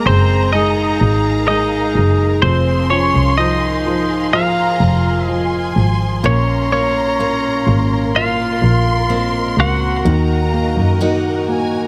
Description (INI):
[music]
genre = pop ballad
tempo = 63 BPM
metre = 4/4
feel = straight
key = Bb minor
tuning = A4 = 440 Hz
[part]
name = twelve-string electric guitar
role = melody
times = 0.0-11.0 s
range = C4 to Gb5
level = -20 LUFS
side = equal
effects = dub echo
[part]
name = rich studio violin section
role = second line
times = 0.0-11.9 s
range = Gb5 to C6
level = -27 LUFS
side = equal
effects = none
[part]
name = warm upright piano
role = accompaniment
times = 0.0-11.9 s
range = Eb3 to Eb4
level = -24 LUFS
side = equal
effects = dub echo
[part]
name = clear studio string section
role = sustained chords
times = 0.0-11.9 s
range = Gb4 to C6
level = -30 LUFS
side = equal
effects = none
[part]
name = warm double bass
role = bass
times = 0.1-11.9 s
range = F1 to Gb2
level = -19 LUFS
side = equal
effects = none
[part]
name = picked steel-string acoustic guitar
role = arpeggios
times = 6.2-11.9 s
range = Bb2 to Gb4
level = -27 LUFS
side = equal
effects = none
[sound]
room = light reverb, studio reverb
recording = echo-heavy mix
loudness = -16 LUFS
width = mono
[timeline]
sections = 0.0-11.9 A section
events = none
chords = 0.0 Abadd9; 2.4 Fm; 6.2 Bbmadd9; 10.1 Ebm